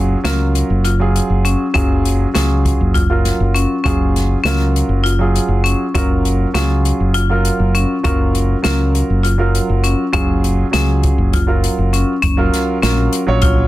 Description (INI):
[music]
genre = progressive instrumental, band music in an uneven meter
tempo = 200 BPM (eighths)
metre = 7/8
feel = straight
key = F# major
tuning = A4 = 439 Hz
[part]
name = warm grand piano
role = accompaniment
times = 0.0-13.7 s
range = F#3 to C#5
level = -20 LUFS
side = right 4 dB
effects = plate reverb
[part]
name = marimba with hard mallets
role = arpeggios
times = 0.0-13.7 s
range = C#4 to E#4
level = -20 LUFS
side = left 4 dB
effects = plate reverb
[part]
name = fingered electric bass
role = bass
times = 0.0-13.6 s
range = F#1 to C#2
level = -16 LUFS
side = equal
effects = none
[part]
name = open jazz drum kit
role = drums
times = 0.2-13.6 s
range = hi-hat, kick drum, snare drum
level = -19 LUFS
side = equal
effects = none
[sound]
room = light reverb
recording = dense, heavily limited modern master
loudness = -13 LUFS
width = side -16 dB against mid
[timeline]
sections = 0.0-12.2 A section; 12.2-13.7 B section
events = none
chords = 0.0 F#maj7